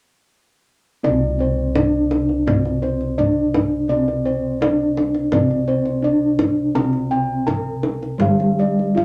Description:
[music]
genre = Javanese gamelan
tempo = 84 BPM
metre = 4/4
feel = straight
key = C slendro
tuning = A4 = 441 Hz
[part]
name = gamelan-type bronze metallophone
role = melody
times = 1.0-9.0 s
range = C4 to Bb4-45c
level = -23 LUFS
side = equal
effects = none
[part]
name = gamelan-type bossed gongs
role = arpeggios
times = 1.0-9.0 s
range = C5 to Bb5-45c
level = -26 LUFS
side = equal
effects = none
[part]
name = gamelan-type bossed gongs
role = bass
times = 1.0-9.0 s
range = C2 to D4+30c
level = -29 LUFS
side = equal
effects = none
[part]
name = kendang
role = percussion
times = 1.0-9.0 s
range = none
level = -26 LUFS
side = equal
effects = none
[part]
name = gamelan-type bronze metallophone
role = accompaniment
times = 1.1-9.0 s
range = C3 to G3+25c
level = -26 LUFS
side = equal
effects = none
[sound]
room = wet small room reverb, RT60 0.5 s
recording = none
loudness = -19 LUFS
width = mono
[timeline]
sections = 1.0-9.0 A section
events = none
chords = none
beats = | 1.04 1.75 2.47 3.18 | 3.90 4.61 5.32 6.04 | 6.75 7.47 8.21 8.97

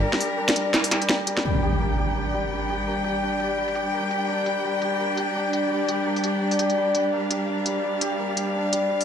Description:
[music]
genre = half-time drum and bass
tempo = 169 BPM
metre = 4/4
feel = swing 58% on 16ths, half-time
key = G minor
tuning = A4 = 440 Hz
[part]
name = bright symphonic cello section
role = sustained chords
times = 0.0-9.0 s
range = G3 to G5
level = -27 LUFS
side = left 1 dB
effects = none
[part]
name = santur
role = arpeggios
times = 0.0-9.0 s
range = G3 to G4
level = -26 LUFS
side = left 1 dB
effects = low-pass filter, dub echo
[part]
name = industrial drum kit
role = drums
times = 0.1-9.0 s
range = crash cymbal, hi-hat, snare drum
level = -24 LUFS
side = equal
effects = low-pass filter on snare, low-pass filter on hats, low-pass filter on cymbals
[part]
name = impact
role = sound effects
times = 1.4-2.9 s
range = none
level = -27 LUFS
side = equal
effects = none
[part]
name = metallic inharmonic drone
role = texture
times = 2.2-9.0 s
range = D4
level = -30 LUFS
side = right 1 dB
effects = chorus, built-in reverb
[sound]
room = wet echo chamber reverb, RT60 1.3 s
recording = none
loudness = -22 LUFS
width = side -8 dB against mid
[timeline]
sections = 0.0-1.4 A section; 1.4-9.0 B section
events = drop 0.0-1.4; impact 1.4-2.9; filter sweep on drum 1.4-9.0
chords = 0.0 G5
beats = | 0.03 0.38 0.74 1.09 | 1.45 1.80 2.16 2.51 | 2.87 3.22 3.58 3.93 | 4.29 4.64 5.00 5.35 | 5.71 6.06 6.42 6.77 | 7.13 7.48 7.84 8.19 | 8.55 8.90

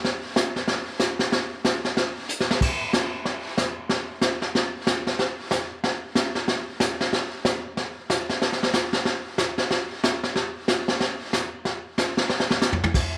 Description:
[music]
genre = country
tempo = 186 BPM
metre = 4/4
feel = swing 61% on 8ths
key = none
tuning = none
[part]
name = vintage brush drum kit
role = drums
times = 0.0-13.2 s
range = brushed snare drum, crash cymbal, hi-hat, kick drum, snare drum, toms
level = -25 LUFS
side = equal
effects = none
[sound]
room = light reverb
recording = none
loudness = -25 LUFS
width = mono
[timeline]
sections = 0.0-12.9 A section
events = drum fill 2.3-2.6, 12.3-12.9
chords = none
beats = | 0.04 0.36 0.68 1.00 | 1.32 1.64 1.96 2.29 | 2.61 2.93 3.25 3.57 | 3.90 4.22 4.54 4.86 | 5.19 5.51 5.83 6.15 | 6.48 6.80 7.12 7.45 | 7.77 8.09 8.42 8.74 | 9.06 9.39 9.71 10.04 | 10.36 10.68 11.01 11.33 | 11.65 11.98 12.30 12.62 | 12.95

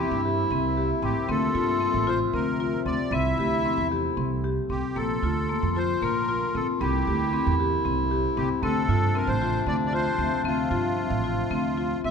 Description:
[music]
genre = contemporary instrumental, chamber music in an uneven meter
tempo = 229 BPM (eighths)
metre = 7/8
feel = straight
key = unclear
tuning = A4 = 440 Hz
[part]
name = accordion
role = melody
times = 0.0-12.1 s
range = F4 to E5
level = -31 LUFS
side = right 2 dB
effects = light tremolo tuning
[part]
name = warm clarinet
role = second line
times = 0.0-12.0 s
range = D4 to F4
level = -28 LUFS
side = left 2 dB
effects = none
[part]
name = deep dark ambient pad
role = sustained chords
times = 0.0-12.1 s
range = C3 to A5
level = -36 LUFS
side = right 1 dB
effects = chorus, built-in reverb
[part]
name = marimba with hard mallets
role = arpeggios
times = 0.0-12.1 s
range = Bb3 to G4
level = -28 LUFS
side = left 7 dB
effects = none
[part]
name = upright bass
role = bass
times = 0.0-12.1 s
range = A1 to G2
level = -28 LUFS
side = right 4 dB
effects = none
[sound]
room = moderate scoring stage reverb, RT60 2.0 s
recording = minimal, uncompressed stereo recording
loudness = -23 LUFS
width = side -6 dB against mid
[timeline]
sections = 0.0-12.1 A section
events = none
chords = 0.0 C7; 1.3 Dm9; 3.1 Am7/C; 5.0 Bbmaj7; 6.8 Am7/C; 8.6 Dm9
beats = 0.25 0.51 0.77 1.03 | 1.29 1.55 1.81 2.07 2.33 2.60 2.86 | 3.12 3.38 3.65 3.91 4.17 4.44 4.70 | 4.97 5.23 5.50 5.76 6.03 6.29 6.55 | 6.81 7.07 7.33 7.59 7.85 8.11 8.37 | 8.63 8.89 9.15 9.41 9.67 9.93 10.19 | 10.45 10.71 10.98 11.24 11.51 11.78 12.05

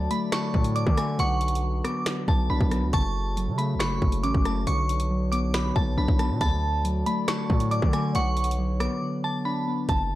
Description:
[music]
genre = hip hop, drill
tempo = 138 BPM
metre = 4/4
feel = half-time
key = unclear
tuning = A4 = 440 Hz
[part]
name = muted felt-like synth keys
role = accompaniment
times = 0.0-9.9 s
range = C#3 to D5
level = -29 LUFS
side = left 1 dB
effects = chorus, low-pass filter
[part]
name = mellow brass ensemble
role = sustained chords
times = 0.0-9.9 s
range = F#3 to D5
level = -36 LUFS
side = right 1 dB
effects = none
[part]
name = distorted 808-style bass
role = bass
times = 0.0-10.2 s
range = F#1 to D3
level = -26 LUFS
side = equal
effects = distortion
[part]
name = glassy synth bell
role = melody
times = 0.1-10.2 s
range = A5 to D6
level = -30 LUFS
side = equal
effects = chorus, phaser, low-pass filter
[part]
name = drill drum kit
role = drums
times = 0.1-10.0 s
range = finger snaps, hi-hat, kick drum, rim click, snare drum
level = -27 LUFS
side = equal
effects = none
[part]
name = glassy synth bell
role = second line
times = 0.3-8.6 s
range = F#5 to C#6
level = -36 LUFS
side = right 2 dB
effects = chorus, tape echo
[sound]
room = little or no reverb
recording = dark, warm production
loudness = -22 LUFS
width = side -15 dB against mid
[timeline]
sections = 0.0-9.9 A section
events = break 9.0-9.9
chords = 0.0 D; 1.2 Bmadd9; 2.9 F#m; 4.7 Bmadd9; 6.4 D; 8.1 Bmadd9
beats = 0.32 0.76 | 1.19 1.63 2.06 2.50 | 2.93 3.37 3.80 4.24 | 4.67 5.11 5.54 5.97 | 6.41 6.84 7.28 7.71 | 8.15 8.58 9.02 9.45 | 9.89

